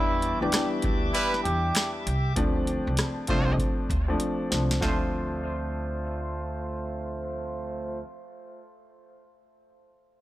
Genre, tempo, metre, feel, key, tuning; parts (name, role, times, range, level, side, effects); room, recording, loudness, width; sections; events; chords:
hip hop, boom-bap hip-hop; 98 BPM; 4/4; swing 63% on 16ths; D dorian; A4 = 440 Hz
trumpet with cup mute; melody; 0.0-1.9 s; E4 to B4; -31 LUFS; right 1 dB; analog delay
dark baby grand piano; accompaniment; 0.0-8.0 s; E3 to D4; -30 LUFS; left 1 dB; low-pass filter
bright tonewheel organ; sustained chords; 0.0-2.3 s; G4 to D6; -35 LUFS; equal; slow rotary speaker
upright bass; bass; 0.0-8.0 s; C2 to E2; -30 LUFS; equal
booming analog drum machine; drums; 0.2-5.0 s; hi-hat, kick drum, rim click, snare drum; -29 LUFS; equal
finger snap; percussion; 0.5-1.9 s; -34 LUFS; right 1 dB
clear trumpet section; stabs; 1.1-8.0 s; G3 to C5; -34 LUFS; right 1 dB; low-pass filter, analog delay
small room ambience; dry, gritty hardware recording, transformer saturation; -25 LUFS; side -15 dB against mid
0.0-2.4 A section; 2.4-4.8 B section; 4.8-7.3 C section
kick muted 1.1-2.4; filter sweep 2.4-4.8; drum fill 4.2-4.8
0.0 Em7; 2.4 Dm7